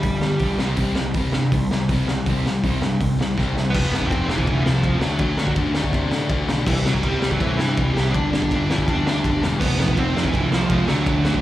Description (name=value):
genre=punk rock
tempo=164 BPM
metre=4/4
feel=straight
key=unclear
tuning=A4 = 440 Hz
part: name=dark smooth lead guitar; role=melody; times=0.0-0.6, 3.7-11.4 s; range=E3 to D5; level=-25 LUFS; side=right 2 dB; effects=overdrive, slapback echo, tape echo
part: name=sludgy distorted guitar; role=riff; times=0.0-11.4 s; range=F2 to D4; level=-24 LUFS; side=left 4 dB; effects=overdrive
part: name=sludgy distorted guitar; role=riff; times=0.0-3.7, 9.6-11.4 s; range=F2 to D4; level=-27 LUFS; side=right 8 dB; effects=overdrive, slapback echo
part: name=fuzz picked electric bass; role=bass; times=0.0-11.4 s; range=E1 to C3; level=-25 LUFS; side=equal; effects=overdrive
part: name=raw garage drum kit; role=drums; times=0.0-11.4 s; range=crash cymbal, hi-hat, kick drum, ride cymbal, snare drum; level=-23 LUFS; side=equal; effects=none
room=little or no reverb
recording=live gig heard through the venue's PA, club reverb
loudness=-18 LUFS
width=side -14 dB against mid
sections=0.0-3.7 A section; 3.7-11.4 B section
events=drum fill 3.4-3.7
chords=0.0 G5; 0.6 C5; 3.7 F5; 5.0 D; 6.7 C; 8.1 G5; 9.6 F; 10.9 D